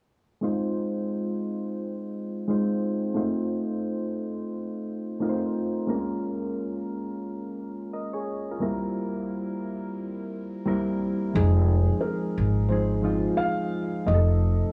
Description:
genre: lo-fi hip hop.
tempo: 88 BPM.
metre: 4/4.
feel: swing 65% on 16ths.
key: F minor.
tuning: A4 = 440 Hz.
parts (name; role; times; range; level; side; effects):
soft electric-piano-like synth keys; accompaniment; 0.4-14.7 s; F3 to Eb5; -30 LUFS; equal; chorus, cassette tape, low-pass filter.
upright bass; bass; 11.4-14.6 s; F1 to Ab1; -24 LUFS; equal; none.
felt-muted upright piano; melody; 12.0-14.7 s; Bb4 to F5; -33 LUFS; equal; low-pass filter, tape echo.
room: light reverb.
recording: cassette tape, low-pass filter, studio ambience.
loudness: -28 LUFS.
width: mono.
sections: 0.4-11.3 A section; 11.3-14.7 B section.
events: filter sweep 0.4-11.3.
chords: 0.4 Fm7; 3.2 F7; 5.9 Bbm7; 8.6 C7; 11.3 Fm7; 14.1 F7.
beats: | 0.43 1.11 1.79 2.47 | 3.15 3.84 4.52 5.20 | 5.88 6.56 7.25 7.93 | 8.61 9.29 9.97 10.65 | 11.34 12.02 12.70 13.38 | 14.06.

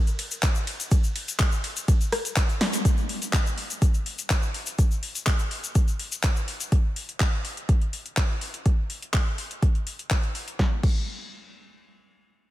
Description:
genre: house.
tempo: 124 BPM.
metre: 4/4.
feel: straight.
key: none.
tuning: none.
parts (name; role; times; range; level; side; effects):
deep house drum kit; drums; 0.1-11.0 s; crash cymbal, handclaps, hi-hat, ride cymbal, rim click, snare drum; -29 LUFS; left 1 dB; overdrive.
egg shaker; percussion; 0.1-6.7 s; none; -34 LUFS; left 6 dB; none.
electronic kick drum; drums; 0.4-11.0 s; none; -22 LUFS; equal; overdrive.
room: digital ambience.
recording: none.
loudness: -23 LUFS.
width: side -15 dB against mid.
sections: 0.0-2.9 A section; 2.9-10.6 B section; 10.6-12.5 C section.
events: drop 0.0-2.9; drum fill 2.6; band accent 2.6.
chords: none.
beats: 0.43 | 0.92 1.40 1.88 2.37 | 2.85 3.33 3.82 4.30 | 4.79 5.27 5.75 6.24 | 6.72 7.21 7.69 8.17 | 8.66 9.14 9.62 10.11 | 10.59.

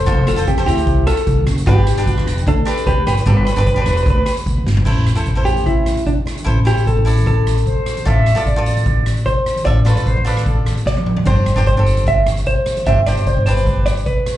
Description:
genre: calypso.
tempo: 150 BPM.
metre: 4/4.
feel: straight.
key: A minor.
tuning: A4 = 445 Hz.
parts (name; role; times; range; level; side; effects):
vintage hollow-body jazz guitar; melody; 0.0-14.4 s; C4 to E5; -20 LUFS; equal; slapback echo, tape echo.
upright bass; bass; 0.0-14.0 s; E1 to D2; -16 LUFS; equal; none.
cavaquinho; accompaniment; 0.1-14.0 s; D4 to E5; -24 LUFS; right 1 dB; slapback echo.
street-band drum kit; drums; 0.1-14.4 s; crash cymbal, hi-hat, kick drum, rim click, snare drum, toms; -19 LUFS; equal; none.
congas; percussion; 0.3-14.4 s; none; -28 LUFS; equal; none.
silver concert flute; second line; 7.7-10.7 s; A4 to E5; -23 LUFS; equal; slapback echo.
room: light reverb.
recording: live gig heard through the venue's PA, club reverb, nothing above 10.7 kHz.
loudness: -13 LUFS.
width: side -13 dB against mid.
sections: 0.0-4.9 A section; 4.9-14.4 B section.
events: drum fill 4.7, 10.9-11.3; hollow-body jazz guitar solo 4.9-14.4.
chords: 0.0 F; 1.7 G; 4.9 Am; 8.1 Dm/A; 11.3 Gsus4.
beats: | 0.07 0.47 0.87 1.27 | 1.67 2.07 2.46 2.86 | 3.26 3.66 4.06 4.46 | 4.86 5.26 5.66 6.06 | 6.46 6.86 7.26 7.66 | 8.06 8.46 8.86 9.26 | 9.66 10.06 10.46 10.86 | 11.26 11.66 12.06 12.46 | 12.86 13.26 13.66 14.06.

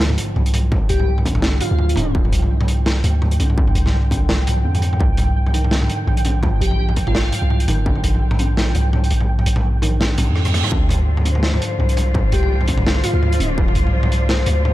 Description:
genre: half-time drum and bass.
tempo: 168 BPM.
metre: 4/4.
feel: swing 55% on 16ths, half-time.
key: D minor.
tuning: A4 = 439 Hz.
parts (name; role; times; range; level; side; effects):
felt-muted upright piano; arpeggios; 0.0-14.7 s; D3 to A3; -28 LUFS; equal; digital delay.
long sustained 808-style bass; bass; 0.0-14.7 s; D1 to F2; -18 LUFS; equal; none.
crunchy breakbeat drum kit; drums; 0.0-14.7 s; hi-hat, rim click, snare drum, toms; -21 LUFS; equal; none.
impact and reverse cymbal; sound effects; 0.0-0.7, 10.2-10.7 s; none; -29 LUFS; right 7 dB; none.
pulsing gated texture; texture; 0.1-14.7 s; C5 to G5; -30 LUFS; left 1 dB; chorus, built-in reverb.
electronic kick drum; drums; 0.7-7.9, 10.7-13.7 s; none; -20 LUFS; equal; distortion.
airy dreamy lead; melody; 0.9-2.1, 6.6-7.6, 12.3-13.5 s; F4 to G4; -27 LUFS; equal; chorus, digital delay.
bright studio cello section; sustained chords; 10.7-14.7 s; D3 to F4; -28 LUFS; left 1 dB; vintage 12-bit sampler grit, sidechain pumping.
room: studio ambience.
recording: dark, warm production.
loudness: -15 LUFS.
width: side -16 dB against mid.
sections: 0.0-14.7 A section.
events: impact 0.0-0.7; kick drops out 9.3-10.7; reverse cymbal 10.2-10.7; drum fill 10.4-10.7.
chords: 0.0 Dm7; 5.0 Cmadd9; 10.7 Dm7.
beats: 0.01 0.36 | 0.72 1.08 1.43 1.79 | 2.15 2.50 2.86 3.22 | 3.58 3.93 4.29 4.65 | 5.00 5.36 5.72 6.08 | 6.43 6.79 7.15 7.50 | 7.86 8.22 8.58 8.93 | 9.29 9.65 10.01 10.36 | 10.72 11.08 11.43 11.79 | 12.15 12.51 12.86 13.22 | 13.58 13.93 14.29 14.65.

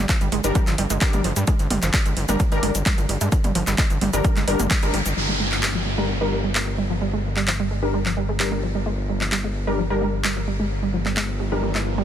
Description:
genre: driving peak-time techno.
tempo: 130 BPM.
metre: 4/4.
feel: straight.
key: G phrygian.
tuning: A4 = 440 Hz.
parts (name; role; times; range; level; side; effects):
analog pluck; riff; 0.0-12.0 s; F3 to Bb3; -27 LUFS; right 3 dB; chorus, sidechain pumping, digital delay.
gritty driven synth bass; bass; 0.0-12.0 s; G1 to G2; -25 LUFS; equal; tube saturation, sidechain pumping.
electronic kick drum; drums; 0.1-4.8 s; none; -21 LUFS; equal; none.
techno drum kit; drums; 0.1-11.8 s; handclaps, hi-hat, shaker, toms; -26 LUFS; equal; none.
rave stab; stabs; 0.4-11.7 s; G3 to Bb4; -28 LUFS; left 2 dB; chorus, built-in reverb, sidechain pumping, digital delay.
downlifter and riser; sound effects; 5.2-12.0 s; none; -31 LUFS; right 1 dB; none.
room: light reverb.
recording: dense, heavily limited modern master.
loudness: -19 LUFS.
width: side -10 dB against mid.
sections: 0.0-5.2 A section; 5.2-12.0 B section.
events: drop 0.0-5.2; band accent 4.7; filter sweep on synth arpeggio sound 5.2-12.0.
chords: 0.0 Gm.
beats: 0.09 0.55 1.01 | 1.48 1.94 2.40 2.86 | 3.32 3.78 4.25 4.71 | 5.17 5.63 6.09 6.55 | 7.01 7.48 7.94 8.40 | 8.86 9.32 9.78 10.24 | 10.71 11.17 11.63.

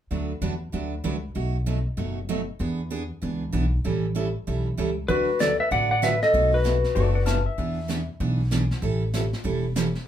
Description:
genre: country, western swing.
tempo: 193 BPM.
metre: 4/4.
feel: swing 62% on 8ths.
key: D major.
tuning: A4 = 440 Hz.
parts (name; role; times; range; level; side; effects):
picked steel-string acoustic guitar; accompaniment; 0.1-9.9 s; B2 to B4; -28 LUFS; right 3 dB; none.
upright bass; bass; 0.1-9.9 s; E1 to E2; -27 LUFS; equal; none.
clean lap steel guitar; melody; 5.1-7.4 s; B4 to F#5; -22 LUFS; left 2 dB; none.
warm clarinet; second line; 5.1-7.4 s; F#4 to D5; -30 LUFS; right 1 dB; none.
jazz brush drum kit; drums; 5.1-10.1 s; brushed snare drum, hi-hat, kick drum, snare drum; -33 LUFS; left 1 dB; none.
clean lap steel guitar; second line; 7.0-8.1 s; A4 to A5; -32 LUFS; left 6 dB; none.
room: wet studio reverb, RT60 0.5 s.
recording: band playing live in one room.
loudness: -22 LUFS.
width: side -10 dB against mid.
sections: 0.1-5.1 A section; 5.1-10.1 B section.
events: none.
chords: 0.1 D6; 1.4 B7; 2.6 E7; 3.8 A7; 5.1 D6; 6.3 B7; 7.6 E7; 8.8 A7.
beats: | 0.11 0.42 0.73 1.04 | 1.35 1.67 1.98 2.29 | 2.60 2.91 3.22 3.53 | 3.85 4.16 4.47 4.78 | 5.09 5.40 5.71 6.02 | 6.33 6.64 6.96 7.27 | 7.58 7.89 8.20 8.51 | 8.82 9.13 9.44 9.75 | 10.06.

